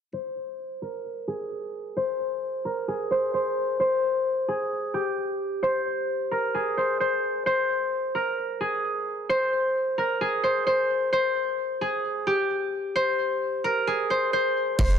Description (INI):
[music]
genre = hip hop, trap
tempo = 131 BPM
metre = 4/4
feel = half-time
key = unclear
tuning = A4 = 441 Hz
[part]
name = concert harp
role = melody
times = 0.1-15.0 s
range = G4 to C5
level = -24 LUFS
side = equal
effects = low-pass filter, digital delay
[part]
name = warm 808-style bass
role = bass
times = 14.8-15.0 s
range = F1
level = -21 LUFS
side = equal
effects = none
[part]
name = trap drum kit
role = drums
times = 14.8-15.0 s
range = crash cymbal, hi-hat, kick drum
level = -24 LUFS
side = equal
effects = none
[sound]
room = light reverb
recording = none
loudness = -24 LUFS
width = side -8 dB against mid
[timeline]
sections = 0.1-14.8 A section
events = filter sweep on harp 0.1-14.8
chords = none